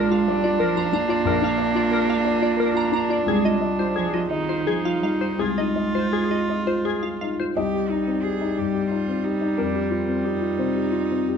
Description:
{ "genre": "neoclassical piano and strings", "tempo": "54-62 BPM (dotted quarters)", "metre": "6/8", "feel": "rubato", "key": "C minor", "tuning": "A4 = 440 Hz", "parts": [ { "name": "rich cello", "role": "second line", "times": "0.0-11.4 s", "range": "Eb3 to Ab4", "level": "-26 LUFS", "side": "right 6 dB", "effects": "none" }, { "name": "felt-muted upright piano", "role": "accompaniment", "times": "0.0-11.4 s", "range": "Bb1 to Eb5", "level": "-24 LUFS", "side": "left 4 dB", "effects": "none" }, { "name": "rich viola", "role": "accompaniment", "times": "0.0-11.4 s", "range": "G3 to F4", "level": "-27 LUFS", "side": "right 3 dB", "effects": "none" }, { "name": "glassy wavetable pluck", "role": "arpeggios", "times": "0.0-7.5 s", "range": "Ab4 to Bb5", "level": "-28 LUFS", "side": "left 3 dB", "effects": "chorus, slapback echo" } ], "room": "light reverb", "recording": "dark, warm production", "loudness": "-20 LUFS", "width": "side -7 dB against mid", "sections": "0.0-7.6 A section; 7.6-11.4 B section", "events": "none", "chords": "0.0 Bb; 3.3 Ab6/C; 7.6 Cm; 9.6 Fsus2" }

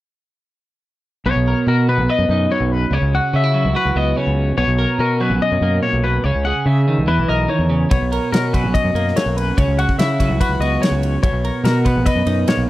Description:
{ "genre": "math rock and midwest emo", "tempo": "144 BPM", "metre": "4/4", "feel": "straight", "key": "B major", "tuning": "A4 = 440 Hz", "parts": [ { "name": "twelve-string electric guitar", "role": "accompaniment", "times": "1.3-12.7 s", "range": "F#2 to B4", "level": "-20 LUFS", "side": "right 3 dB", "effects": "lush chorus" }, { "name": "twangy electric guitar", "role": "arpeggios", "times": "1.3-12.7 s", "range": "A#4 to F#5", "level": "-21 LUFS", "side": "left 5 dB", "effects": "harmonic tremolo" }, { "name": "growling fingered electric bass", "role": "bass", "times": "1.3-12.7 s", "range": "B1 to C#3", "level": "-19 LUFS", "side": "equal", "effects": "overdrive" }, { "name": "modern studio drum kit", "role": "drums", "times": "7.9-12.6 s", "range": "kick drum, ride cymbal, snare drum", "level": "-19 LUFS", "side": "equal", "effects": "none" } ], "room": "little or no reverb", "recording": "dry, close 1970s-style studio recording", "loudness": "-15 LUFS", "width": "side -16 dB against mid", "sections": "1.3-12.7 A section", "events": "none", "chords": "1.3 Bmaj9; 2.9 F#7sus4/C#; 4.6 Bmaj9; 6.2 C#madd9; 7.1 E5; 7.9 Bmaj9; 9.6 F#7sus4/C#; 11.2 Bmaj9" }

